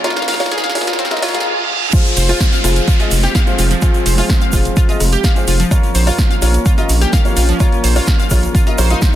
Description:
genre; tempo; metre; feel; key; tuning
progressive house; 127 BPM; 4/4; straight; F minor; A4 = 444 Hz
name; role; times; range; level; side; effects
lush unison pad; sustained chords; 0.0-9.2 s; Bb2 to Bb4; -26 LUFS; equal; chorus, sidechain pumping
analog pluck; arpeggios; 0.0-9.0 s; F3 to F5; -21 LUFS; left 1 dB; chorus, sidechain pumping, ping-pong delay
dark baby grand piano; stabs; 0.0-9.0 s; F4 to F5; -22 LUFS; left 2 dB; sidechain pumping, ping-pong delay
deep house drum kit; drums; 0.0-9.1 s; crash cymbal, hi-hat, rim click, snare drum; -21 LUFS; equal; overdrive, high-pass filter on snare, high-pass filter on hats, high-pass filter on cymbals, high-pass filter on room
riser, reverse cymbal and downlifter; sound effects; 0.1-5.7 s; none; -23 LUFS; right 2 dB; none
electronic kick drum; drums; 1.9-9.1 s; none; -13 LUFS; equal; overdrive
egg shaker; percussion; 1.9-9.1 s; none; -27 LUFS; right 5 dB; none
round analog bass; bass; 2.2-8.9 s; F1 to Bb1; -14 LUFS; equal; tube saturation, sidechain pumping
room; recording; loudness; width
light reverb, digital ambience; dense, heavily limited modern master, high-pass filter; -12 LUFS; side -12 dB against mid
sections
0.0-1.9 A section; 1.9-9.2 B section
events
build-up 0.0-1.9; drum fill 0.0-1.5; reverse cymbal 1.1-1.9; drop 1.9-9.2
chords
0.0 Bbm; 1.9 Fm; 5.7 Bbm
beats
| 0.04 0.52 0.99 1.46 | 1.93 2.40 2.88 3.35 | 3.82 4.29 4.77 5.24 | 5.71 6.18 6.66 7.13 | 7.60 8.07 8.55 9.02

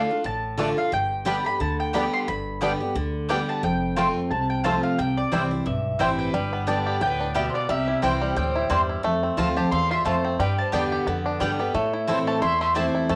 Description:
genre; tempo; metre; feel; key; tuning
bluegrass; 178 BPM; 4/4; swing 56% on 8ths; unclear; A4 = 440 Hz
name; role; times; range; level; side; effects
mandolin; melody; 0.0-13.2 s; C5 to C6; -30 LUFS; equal; cassette tape
picked steel-string acoustic guitar; accompaniment; 0.0-13.2 s; E2 to G4; -29 LUFS; equal; none
upright bass; bass; 0.0-13.2 s; F1 to A2; -34 LUFS; equal; none
bluegrass banjo; arpeggios; 0.6-13.2 s; G3 to G4; -30 LUFS; equal; none
mandolin; stabs; 0.6-12.9 s; A3 to A5; -30 LUFS; equal; plate reverb
clear fiddle; second line; 6.0-13.2 s; E4 to F5; -35 LUFS; equal; none
room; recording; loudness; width
wet studio reverb, RT60 0.6 s; home recording on cassette; -24 LUFS; mono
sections
0.0-6.3 A section; 6.3-13.2 B section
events
none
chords
0.0 Dm; 0.9 G; 3.6 F; 5.0 C; 6.3 G; 7.7 C; 9.0 F; 10.4 G; 11.7 Am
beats
0.25 0.59 | 0.93 1.27 1.61 1.94 | 2.28 2.62 2.96 3.30 | 3.63 3.97 4.31 4.65 | 4.99 5.32 5.66 6.00 | 6.34 6.68 7.01 7.35 | 7.69 8.03 8.37 8.70 | 9.04 9.38 9.72 10.06 | 10.39 10.73 11.07 11.41 | 11.74 12.08 12.42 12.76 | 13.10

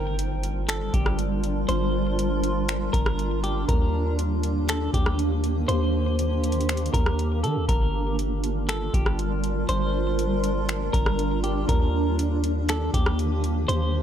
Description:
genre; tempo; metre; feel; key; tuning
hip hop, atmospheric cloud-rap; 120 BPM; 4/4; half-time; G minor; A4 = 438 Hz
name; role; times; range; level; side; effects
clean electric guitar; melody; 0.0-14.0 s; G4 to C5; -31 LUFS; left 1 dB; low-pass filter, ping-pong delay
granular cloud pad; sustained chords; 0.0-14.0 s; Eb3 to Bb4; -27 LUFS; right 2 dB; built-in reverb, sidechain pumping
long sustained 808-style bass; bass; 0.0-14.0 s; G1 to Eb3; -26 LUFS; equal; none
impact; sound effects; 0.0-1.7 s; none; -44 LUFS; left 1 dB; none
booming analog drum machine; drums; 0.2-13.8 s; finger snaps, hi-hat, kick drum, rim click; -25 LUFS; equal; none
room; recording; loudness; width
light reverb; none; -22 LUFS; side -9 dB against mid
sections
0.0-14.0 A section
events
impact 0.0-1.7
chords
0.0 Gm7; 3.7 Ebmaj7; 7.7 Gm7; 11.7 Ebmaj7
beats
0.19 0.69 1.19 | 1.69 2.19 2.69 3.19 | 3.69 4.19 4.69 5.19 | 5.69 6.19 6.69 7.19 | 7.69 8.19 8.69 9.19 | 9.69 10.19 10.69 11.19 | 11.69 12.19 12.69 13.19 | 13.69

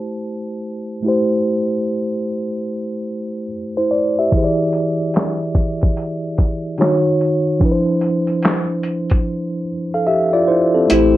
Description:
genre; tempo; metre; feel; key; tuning
lo-fi hip hop; 73 BPM; 4/4; swing 62% on 16ths; A minor; A4 = 436 Hz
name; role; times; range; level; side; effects
mellow tine electric piano; accompaniment; 0.0-11.2 s; D#3 to F5; -17 LUFS; equal; medium stereo tremolo, cassette tape
lo-fi sampler-style drum kit; drums; 4.3-11.1 s; handclaps, hi-hat, kick drum, snare drum; -17 LUFS; equal; overdrive
vintage hollow-body jazz guitar; melody; 10.9-11.2 s; E4; -14 LUFS; left 5 dB; none
soft dub sub bass; bass; 10.9-11.2 s; A1; -18 LUFS; equal; none
room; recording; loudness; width
little or no reverb; dry, gritty hardware recording, low-pass filter; -16 LUFS; side -14 dB against mid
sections
0.0-10.9 A section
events
filter sweep 0.0-10.9; drums muted 9.3-10.9; kick muted 10.9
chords
0.0 Am7; 4.3 E7; 6.8 D#m7; 7.6 Dm7/F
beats
0.22 | 1.04 1.86 2.68 3.50 | 4.33 5.15 5.97 6.79 | 7.61 8.44 9.26 10.08 | 10.90

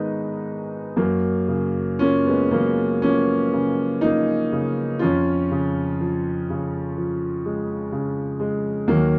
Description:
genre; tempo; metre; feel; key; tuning
classical, lyrical solo piano; 54-63 BPM; 4/4; rubato; F# major; A4 = 440 Hz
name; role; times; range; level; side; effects
warm concert grand piano; solo; 0.0-9.2 s; G#1 to B5; -22 LUFS; equal; none
room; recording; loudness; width
light reverb; none; -22 LUFS; mono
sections
1.0-9.2 A section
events
none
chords
0.0 G#m; 1.0 F#maj7; 5.0 C#/E#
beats
| 0.97 2.00 3.03 4.03 | 5.02 6.01 6.98 7.92 | 8.87

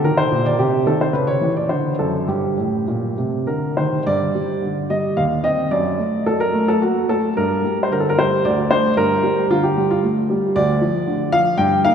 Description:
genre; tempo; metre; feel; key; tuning
classical, baroque-style suite movement for grand piano; 98-118 BPM; 3/4; rubato; G minor; A4 = 440 Hz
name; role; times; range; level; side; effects
warm baby grand piano; solo; 0.0-11.9 s; D2 to G5; -16 LUFS; equal; none
room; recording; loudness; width
wet cathedral reverb, RT60 4.3 s; recorded in a church or concert hall; -16 LUFS; side -7 dB against mid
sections
0.0-4.1 A section; 4.1-11.9 B section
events
none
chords
0.0 Eb5; 0.6 Cm6; 1.1 C#m7; 1.7 D7; 2.3 Gm; 4.1 G5; 5.2 Cm/Eb; 5.7 D/F#; 7.4 Gm; 8.4 D5; 9.0 Gm; 10.6 Dm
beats
0.04 | 0.59 1.14 1.69 | 2.28 2.88 3.47 | 4.07 4.62 5.17 | 5.72 6.26 6.81 | 7.36 7.91 8.44 | 8.97 9.51 10.03 | 10.56 11.07 11.59

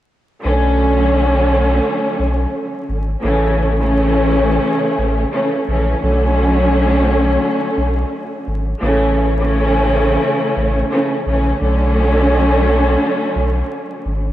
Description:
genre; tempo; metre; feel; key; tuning
hip hop; 86 BPM; 4/4; swing 58% on 16ths; unclear; A4 = 440 Hz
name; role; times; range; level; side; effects
warm studio string section; accompaniment; 0.4-14.2 s; C#3 to C#4; -15 LUFS; equal; high-pass filter, low-pass filter
warm sub bass; bass; 0.4-14.3 s; G#1 to B1; -17 LUFS; equal; none
room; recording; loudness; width
moderate lush hall reverb, RT60 2.8 s; dreamy mix soaked in reverb, vinyl crackle; -14 LUFS; side -13 dB against mid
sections
0.4-11.6 A section; 11.6-14.3 B section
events
none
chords
0.4 Bm7; 3.2 A; 6.0 Bm7; 8.8 A; 11.6 Bm7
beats
| 0.44 1.14 1.84 2.54 | 3.23 3.93 4.63 5.33 | 6.02 6.72 7.42 8.12 | 8.81 9.51 10.21 10.91 | 11.61 12.30 13.00 13.70

